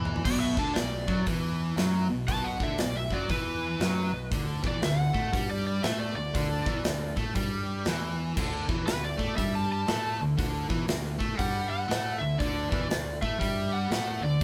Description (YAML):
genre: blues rock power trio and southern rock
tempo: 119 BPM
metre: 4/4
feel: swing 63% on 8ths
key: unclear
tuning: A4 = 440 Hz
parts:
  - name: fuzz guitar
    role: riff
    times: 0.0-14.4 s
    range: B2 to A3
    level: -33 LUFS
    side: equal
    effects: distortion
  - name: growling fingered electric bass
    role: bass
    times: 0.0-14.4 s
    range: B1 to A2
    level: -37 LUFS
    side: equal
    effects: overdrive
  - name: big rock drum kit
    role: drums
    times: 0.1-14.4 s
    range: crash cymbal, hi-hat, kick drum, snare drum, toms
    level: -34 LUFS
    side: equal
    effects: none
  - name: overdriven slide guitar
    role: melody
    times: 0.3-14.4 s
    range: B4 to A5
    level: -35 LUFS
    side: equal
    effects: none
room: light reverb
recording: band playing live in one room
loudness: -29 LUFS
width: mono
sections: 0.3-14.4 A section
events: drum fill 0.0; electric slide guitar solo 0.3-14.4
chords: 0.3 Bm; 4.3 D5